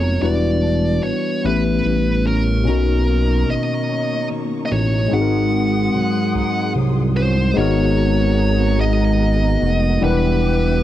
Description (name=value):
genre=R&B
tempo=49 BPM (dotted quarters)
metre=6/8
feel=straight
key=G# minor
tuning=A4 = 439 Hz
part: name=high-gain lead guitar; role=melody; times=0.0-10.8 s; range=A#4 to F#5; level=-24 LUFS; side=right 1 dB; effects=distortion
part: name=electric guitar at the edge of break-up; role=second line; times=0.0-10.8 s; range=G#2 to A#4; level=-24 LUFS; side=right 5 dB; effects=ensemble chorus
part: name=barky tine electric piano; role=accompaniment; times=0.0-10.8 s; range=B2 to F#5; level=-21 LUFS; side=left 6 dB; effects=overdrive
part: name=smooth synth bass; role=bass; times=0.0-10.8 s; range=E1 to B#1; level=-18 LUFS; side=right 1 dB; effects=none
part: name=warm studio string section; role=sustained chords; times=2.7-10.8 s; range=A#3 to D#6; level=-32 LUFS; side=left 1 dB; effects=none
room=little or no reverb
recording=dry, close 1970s-style studio recording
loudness=-15 LUFS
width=side -13 dB against mid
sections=0.0-7.6 A section; 7.6-10.8 B section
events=none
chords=0.2 Em7; 1.4 A9; 2.7 Bmaj9; 5.1 G#7; 7.6 G#m9; 10.0 Em7